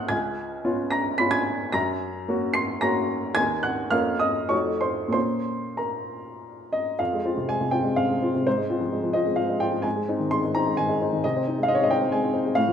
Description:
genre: classical, romantic character piece for solo piano.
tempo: 91-139 BPM.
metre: 3/4.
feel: rubato.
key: Bb minor, F minor from 7.0 s.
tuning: A4 = 442 Hz.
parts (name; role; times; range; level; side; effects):
warm upright piano; solo; 0.0-12.7 s; Db2 to C7; -22 LUFS; equal; none.
room: moderate recital hall reverb, RT60 1.3 s.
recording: none.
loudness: -22 LUFS.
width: side -8 dB against mid.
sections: 0.0-7.0 A section; 7.0-12.7 B section.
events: none.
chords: 0.1 Db7; 1.7 Gb; 3.4 Ebm; 3.9 Bbm/F; 4.5 F7b9; 5.1 Bbm; 7.0 Fm; 8.5 Fm/Ab; 9.8 Ab; 11.2 Ab/C.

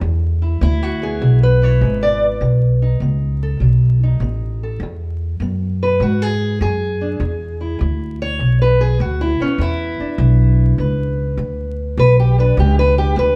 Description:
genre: acoustic country blues, solo or duo.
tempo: 100 BPM.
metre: 4/4.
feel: swing 66% on 8ths.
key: E mixolydian.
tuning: A4 = 441 Hz.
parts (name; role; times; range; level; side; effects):
fingerpicked steel-string acoustic guitar; melody; 0.0-13.4 s; E2 to D5; -22 LUFS; equal; none.
upright bass; bass; 0.0-13.4 s; G#1 to G#2; -18 LUFS; equal; none.
room: moderate stone room reverb, RT60 1.4 s.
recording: band playing live in one room, vinyl crackle.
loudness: -17 LUFS.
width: mono.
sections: 0.0-4.8 A section; 4.8-13.4 B section.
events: steel-string acoustic guitar solo 4.8-13.4.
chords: 0.0 E7; 2.4 B7; 4.8 E7.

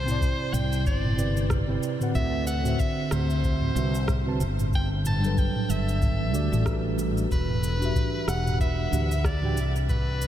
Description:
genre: sunset chillout.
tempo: 93 BPM.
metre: 4/4.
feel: swing 57% on 16ths.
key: unclear.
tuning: A4 = 440 Hz.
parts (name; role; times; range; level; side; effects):
edgy soprano saxophone; melody; 0.0-10.3 s; B4 to A5; -32 LUFS; equal; diffuse ambient delay.
mellow tine electric piano; accompaniment; 0.0-9.6 s; C3 to A5; -30 LUFS; moving between left 3 dB and right 4 dB; auto-pan, diffuse ambient delay.
fretless electric bass; bass; 0.0-10.3 s; E1 to D2; -26 LUFS; equal; lush chorus.
smooth R&B drum kit; drums; 0.1-10.3 s; rim click, shaker, toms; -32 LUFS; right 1 dB; studio reverb.
electronic kick drum; drums; 0.2-10.0 s; none; -27 LUFS; equal; overdrive, studio reverb.
room: moderate huge ambient reverb, RT60 7.5 s.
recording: dreamy mix soaked in reverb.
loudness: -23 LUFS.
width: side -11 dB against mid.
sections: 0.0-10.3 A section.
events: none.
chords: 0.0 Cmaj9; 2.1 D13; 4.7 Gmaj9; 7.3 Em7.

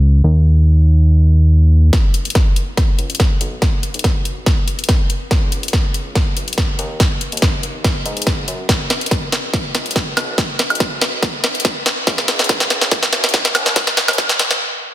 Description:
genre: future bass.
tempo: 142 BPM.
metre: 4/4.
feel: half-time.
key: unclear.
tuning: A4 = 440 Hz.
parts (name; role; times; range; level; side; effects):
fat analog bass; bass; 0.0-14.6 s; F#1 to G#2; -14 LUFS; equal; sidechain pumping, high-pass filter.
electronic kick drum; drums; 1.9-14.3 s; none; -17 LUFS; equal; studio reverb.
trap drum kit; drums; 1.9-14.6 s; hi-hat, snare drum, woodblock; -17 LUFS; equal; high-pass filter on snare, studio reverb, high-pass filter on hats, high-pass filter on perc.
room: light reverb.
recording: dense, heavily limited modern master, high-pass filter.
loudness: -13 LUFS.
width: side -14 dB against mid.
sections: 0.0-1.9 A section; 1.9-14.9 B section.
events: build-up 1.9-14.9; drum fill 1.9-14.6; filter sweep 1.9-14.9; stop 14.6-14.9.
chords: none.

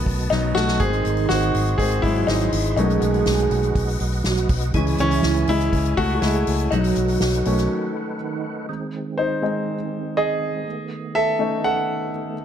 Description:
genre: piano-driven pop.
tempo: 122 BPM.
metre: 4/4.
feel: straight.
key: unclear.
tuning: A4 = 440 Hz.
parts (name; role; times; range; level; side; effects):
warm concert grand piano; accompaniment; 0.0-12.4 s; D#3 to F#5; -22 LUFS; left 2 dB; none.
percussive tonewheel organ; sustained chords; 0.0-12.4 s; D#3 to B#5; -32 LUFS; right 3 dB; chorus vibrato, fast rotary speaker.
vintage muted fingered electric bass; bass; 0.1-7.7 s; G#1 to C#2; -23 LUFS; equal; none.
soft-mallet drum kit; drums; 0.1-7.7 s; hi-hat, kick drum, snare drum; -27 LUFS; equal; none.
mellow French horn section; second line; 0.8-8.4 s; D#3 to G#4; -26 LUFS; right 6 dB; ping-pong delay.
room: light reverb, studio reverb.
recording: dark, warm production.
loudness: -19 LUFS.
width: side -9 dB against mid.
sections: 0.0-8.7 A section; 8.7-12.4 A section.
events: grand piano solo 0.0-8.7, 8.7-12.4; drum fill 0.3-0.8; break 7.7-8.7.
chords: 0.0 B7; 0.8 G#; 2.8 B7; 4.7 C#m; 6.7 B7; 8.7 G#; 10.7 B7.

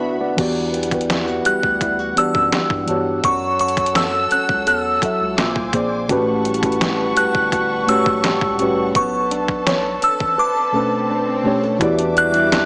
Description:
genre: contemporary R&B.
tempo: 84 BPM.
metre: 4/4.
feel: straight.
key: E dorian.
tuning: A4 = 440 Hz.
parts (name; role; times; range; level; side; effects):
muted felt-like synth keys; accompaniment; 0.0-12.7 s; A2 to A5; -20 LUFS; equal; chorus.
muted studio string section; sustained chords; 0.0-12.7 s; G3 to E6; -25 LUFS; equal; none.
flamenco guitar; arpeggios; 0.0-12.7 s; A2 to C#5; -24 LUFS; equal; none.
round analog bass; bass; 0.4-12.7 s; G1 to G2; -31 LUFS; equal; none.
detuned 8-bit digital drum machine; drums; 0.4-12.7 s; crash cymbal, hi-hat, kick drum, snare drum; -22 LUFS; equal; overdrive.
glassy synth bell; melody; 1.5-12.7 s; C#6 to F#6; -19 LUFS; equal; chorus.
swell; sound effects; 10.3-11.8 s; none; -29 LUFS; equal; none.
room: moderate lush hall reverb, RT60 3.0 s.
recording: small speaker sound.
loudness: -15 LUFS.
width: side -32 dB against mid.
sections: 0.4-11.8 A section.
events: break 0.0-0.4; swell 10.3-11.8.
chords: 0.4 Em9; 3.2 F#m7; 5.4 A#9; 6.1 A13; 9.0 Bm9; 11.8 Em9.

